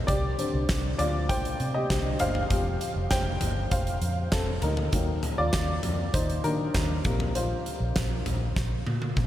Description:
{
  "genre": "piano-driven pop",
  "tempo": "99 BPM",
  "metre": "4/4",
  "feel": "straight",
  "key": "Bb major",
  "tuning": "A4 = 440 Hz",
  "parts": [
    { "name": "warm upright piano", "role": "accompaniment", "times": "0.0-9.3 s", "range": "C3 to G5", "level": "-30 LUFS", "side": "left 1 dB", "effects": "none" },
    { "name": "vintage muted fingered electric bass", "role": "bass", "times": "0.0-9.3 s", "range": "F1 to Eb3", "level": "-29 LUFS", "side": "equal", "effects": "none" },
    { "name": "huge arena drum kit", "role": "drums", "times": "0.1-9.3 s", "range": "hi-hat, kick drum, snare drum, toms", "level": "-29 LUFS", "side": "equal", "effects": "none" }
  ],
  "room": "moderate huge ambient reverb, RT60 7.5 s",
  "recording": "dreamy mix soaked in reverb",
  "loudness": "-25 LUFS",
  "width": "side -13 dB against mid",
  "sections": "0.0-9.3 A section",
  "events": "upright piano solo 0.0-9.3; drum fill 8.6-9.3",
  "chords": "0.1 Csus2; 2.5 Fsus2; 4.9 Ebm; 7.1 Bbsus2",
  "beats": "| 0.09 0.69 1.30 1.90 | 2.51 3.12 3.72 4.33 | 4.93 5.54 6.14 6.75 | 7.35 7.96 8.56 9.17"
}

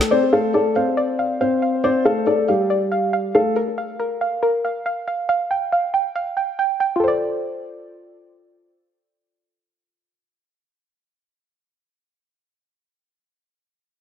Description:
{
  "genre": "hip hop",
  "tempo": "139 BPM",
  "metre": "4/4",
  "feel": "half-time",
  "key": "D minor",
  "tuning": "A4 = 440 Hz",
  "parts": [
    { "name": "dark concert grand piano", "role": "melody", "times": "0.0-3.6 s", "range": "G3 to C5", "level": "-18 LUFS", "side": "left 1 dB", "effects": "low-pass filter, digital delay" },
    { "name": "soft round pluck", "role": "accompaniment", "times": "0.0-11.6 s", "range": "F4 to G5", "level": "-21 LUFS", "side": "right 1 dB", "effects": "chorus, low-pass filter" }
  ],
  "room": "light reverb, digital ambience",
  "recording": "none",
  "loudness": "-18 LUFS",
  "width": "side -9 dB against mid",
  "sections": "0.0-7.0 A section; 7.0-10.5 B section",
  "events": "none",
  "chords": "0.1 Dm7; 3.6 Bb5; 5.3 Fsus2; 7.0 Dm7",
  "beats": "| 0.11 0.54 0.97 1.41 | 1.84 2.27 2.70 3.13 | 3.56 4.00 4.43 4.86 | 5.29 5.72 6.15 6.58 | 7.02 7.45 7.88 8.31 | 8.74 9.18 9.61 10.04"
}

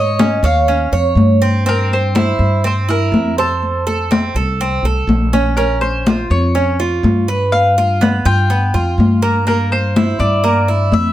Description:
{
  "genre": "latin, Cuban son and guajira",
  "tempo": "123 BPM",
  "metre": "4/4",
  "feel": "straight",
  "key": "unclear",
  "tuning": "A4 = 440 Hz",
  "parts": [
    { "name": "mandolin", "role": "melody", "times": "0.0-11.1 s", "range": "A4 to G5", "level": "-19 LUFS", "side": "left 2 dB", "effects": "none" },
    { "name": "Cuban tres", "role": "arpeggios", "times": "0.0-11.1 s", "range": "Bb3 to Db5", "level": "-18 LUFS", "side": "right 4 dB", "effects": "none" },
    { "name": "upright bass", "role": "bass", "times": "0.0-11.1 s", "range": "Bb1 to Ab2", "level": "-16 LUFS", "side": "equal", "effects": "none" },
    { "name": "congas", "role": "percussion", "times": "0.2-11.1 s", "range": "none", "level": "-18 LUFS", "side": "left 2 dB", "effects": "none" }
  ],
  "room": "moderate studio reverb, RT60 0.7 s",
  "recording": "none",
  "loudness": "-12 LUFS",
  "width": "side -13 dB against mid",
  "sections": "0.0-5.6 A section; 5.6-11.1 A section",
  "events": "none",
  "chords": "0.0 Absus4; 1.7 C7/G; 3.6 F; 5.6 Bbmadd9; 7.5 G7; 9.5 C7/G",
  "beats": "0.19 0.68 1.17 | 1.66 2.15 2.64 3.13 | 3.62 4.11 4.59 5.08 | 5.57 6.06 6.55 7.04 | 7.53 8.01 8.50 8.99 | 9.47 9.96 10.45 10.93"
}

